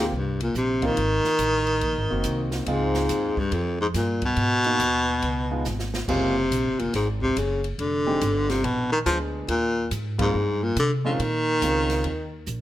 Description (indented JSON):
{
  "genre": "jazz, small-group swing and bop",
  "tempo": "141 BPM",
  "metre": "4/4",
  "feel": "swing 65% on 8ths",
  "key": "Eb major",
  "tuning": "A4 = 441 Hz",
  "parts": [
    { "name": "breathy baritone saxophone", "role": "melody", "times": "0.0-12.4 s", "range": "F2 to F3", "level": "-23 LUFS", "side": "left 1 dB", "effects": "plate reverb" },
    { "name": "warm concert grand piano", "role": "accompaniment", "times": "0.0-12.1 s", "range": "G3 to Ab4", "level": "-29 LUFS", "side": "right 1 dB", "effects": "none" },
    { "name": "upright bass", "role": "bass", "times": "0.0-12.6 s", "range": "F1 to C3", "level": "-28 LUFS", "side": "right 1 dB", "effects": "none" },
    { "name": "open jazz drum kit", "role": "drums", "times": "0.1-12.6 s", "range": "crash cymbal, hi-hat, kick drum, ride cymbal, snare drum", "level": "-35 LUFS", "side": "equal", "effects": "none" }
  ],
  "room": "light reverb",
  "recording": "none",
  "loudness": "-22 LUFS",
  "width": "side -14 dB against mid",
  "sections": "0.0-12.6 A section",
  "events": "drum fill 5.7-6.1; band accent 10.1",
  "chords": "0.0 Eb69; 1.0 Ab7; 2.7 Dbmaj7; 4.4 Abm9; 5.2 Db9; 6.1 Gbmaj7; 7.8 Fm9; 8.6 Bb7b9; 9.5 Eb69; 11.2 Bbm7; 12.0 Eb5",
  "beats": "0.12 0.55 | 0.97 1.40 1.82 2.25 | 2.67 3.10 3.53 3.95 | 4.38 4.80 5.23 5.66 | 6.08 6.51 6.93 7.36 | 7.79 8.21 8.64 9.06 | 9.49 9.92 10.34 10.77 | 11.20 11.62 12.05 12.47"
}